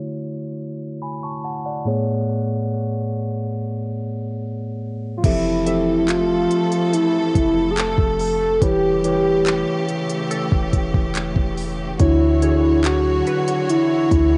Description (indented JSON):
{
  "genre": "contemporary R&B",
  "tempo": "71 BPM",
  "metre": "4/4",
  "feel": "straight",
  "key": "A major",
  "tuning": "A4 = 440 Hz",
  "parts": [
    { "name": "mellow tine electric piano", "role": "accompaniment", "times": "0.0-14.4 s", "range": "A2 to C#6", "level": "-26 LUFS", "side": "equal", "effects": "cassette tape" },
    { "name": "soft octave-layered synth lead", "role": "melody", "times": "5.2-14.4 s", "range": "E4 to A4", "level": "-21 LUFS", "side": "equal", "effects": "chorus, cassette tape" },
    { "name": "bright studio string section", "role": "sustained chords", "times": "5.2-14.4 s", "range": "C#3 to C#5", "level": "-30 LUFS", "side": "equal", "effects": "cassette tape" },
    { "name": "warm 808-style bass", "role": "bass", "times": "5.2-14.4 s", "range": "E1 to D2", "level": "-26 LUFS", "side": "equal", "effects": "none" },
    { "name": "smooth R&B drum kit", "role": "drums", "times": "5.2-14.3 s", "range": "crash cymbal, handclaps, hi-hat, kick drum", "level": "-25 LUFS", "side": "equal", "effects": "none" },
    { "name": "glassy wavetable pluck", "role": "texture", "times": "5.7-14.4 s", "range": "A4 to E5", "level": "-36 LUFS", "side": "equal", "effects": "chorus, cassette tape, tape echo" }
  ],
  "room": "little or no reverb",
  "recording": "home recording on cassette, low-pass filter, nothing above 10.7 kHz",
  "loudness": "-20 LUFS",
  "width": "mono",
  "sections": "0.0-5.2 A section; 5.2-14.4 B section",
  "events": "filter sweep 0.0-5.2",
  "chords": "0.0 Dmaj7; 1.9 Amaj7; 5.2 Fmaj7; 8.6 A7/E; 12.0 Dmaj7",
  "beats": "0.17 1.01 | 1.86 2.70 3.55 4.39 | 5.24 6.08 6.93 7.77 | 8.62 9.46 10.31 11.15 | 12.00 12.84 13.69"
}